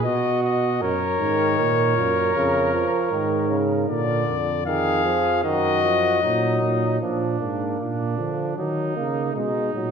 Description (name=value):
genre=classical, imitative canzona for brass ensemble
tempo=78 BPM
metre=4/4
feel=straight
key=unclear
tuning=A4 = 440 Hz
part: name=clear trumpet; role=melody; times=0.0-7.0 s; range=C#5 to E#5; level=-24 LUFS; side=left 8 dB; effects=none
part: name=warm trumpet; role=second line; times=0.0-9.9 s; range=D4 to A#4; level=-26 LUFS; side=right 6 dB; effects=none
part: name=dark bass trombone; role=bass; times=0.0-9.9 s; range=E#2 to D#3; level=-26 LUFS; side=right 2 dB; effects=none
part: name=warm trombone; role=accompaniment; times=1.2-9.9 s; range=A#2 to A#3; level=-25 LUFS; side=right 1 dB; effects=none
room=wet scoring stage reverb, RT60 1.4 s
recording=minimal, uncompressed stereo recording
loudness=-20 LUFS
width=side -6 dB against mid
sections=0.0-7.0 A section; 7.0-9.9 B section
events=none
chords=0.0 G#m (rootless); 0.8 D#m/F#; 2.4 C#/E#; 3.9 A#; 5.4 D#m/F#; 7.0 A#; 8.6 B